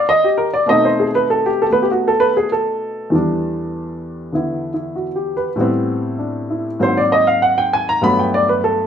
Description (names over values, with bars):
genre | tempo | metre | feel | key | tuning
solo jazz | 98 BPM | 4/4 | swing 67% on 8ths | unclear | A4 = 442 Hz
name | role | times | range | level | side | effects
warm baby grand piano | solo | 0.0-8.9 s | E2 to B5 | -15 LUFS | equal | none
room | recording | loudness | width
moderate studio reverb, RT60 0.9 s | band playing live in one room | -15 LUFS | side -8 dB against mid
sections
0.0-8.9 A section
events
grand piano solo 0.0-8.9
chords
0.0 Cm9; 0.7 B7b9; 3.1 Em7; 5.6 Am9; 6.8 Ab9; 8.0 Gmaj9